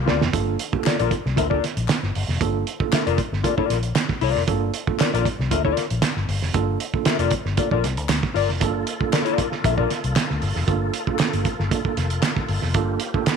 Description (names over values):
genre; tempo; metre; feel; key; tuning
funk; 116 BPM; 4/4; straight; G minor; A4 = 437 Hz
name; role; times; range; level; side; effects
tonewheel organ; sustained chords; 0.0-0.3, 8.6-13.4 s; Bb3 to A4; -31 LUFS; left 2 dB; fast rotary speaker, chorus vibrato
vintage muted fingered electric bass; bass; 0.0-13.3 s; F1 to D2; -24 LUFS; left 2 dB; none
mellow electric guitar; accompaniment; 0.1-9.9 s; F4 to E5; -25 LUFS; left 15 dB; analog chorus
cloth-damped thuddy drum kit; drums; 0.1-13.4 s; hi-hat, kick drum, snare drum; -23 LUFS; right 5 dB; none
mellow tine electric piano; stabs; 0.3-13.4 s; A3 to A4; -28 LUFS; right 13 dB; slow stereo tremolo
group handclap; percussion; 0.8-13.4 s; none; -33 LUFS; left 13 dB; none
room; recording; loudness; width
light reverb, small room ambience; 1960s-style stereo with parts hard left and right; -20 LUFS; side -6 dB against mid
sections
0.3-13.4 A section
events
drum fill 0.0-0.3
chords
0.3 Gm7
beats
| 0.34 0.85 1.37 1.89 | 2.40 2.92 3.44 3.95 | 4.47 4.99 5.51 6.02 | 6.54 7.06 7.58 8.09 | 8.61 9.13 9.64 10.16 | 10.68 11.20 11.71 12.23 | 12.75 13.26